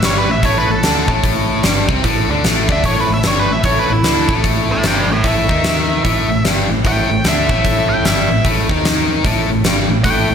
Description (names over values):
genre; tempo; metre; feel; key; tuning
blues rock power trio and southern rock; 150 BPM; 4/4; swing 62% on 8ths; A mixolydian; A4 = 440 Hz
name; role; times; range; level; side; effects
octave-fuzz lead guitar; melody; 0.0-10.3 s; E4 to A5; -19 LUFS; equal; distortion, slapback echo
distorted electric guitar; riff; 0.0-10.3 s; G2 to D#4; -17 LUFS; left 1 dB; overdrive
vintage muted fingered electric bass; bass; 0.0-10.3 s; G1 to D#2; -21 LUFS; equal; none
huge arena drum kit; drums; 0.0-10.2 s; hi-hat, kick drum, snare drum; -17 LUFS; equal; none
room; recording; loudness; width
moderate scoring stage reverb, RT60 1.9 s, studio reverb; big arena sound; -12 LUFS; side -7 dB against mid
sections
0.0-10.3 A section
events
none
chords
0.0 A5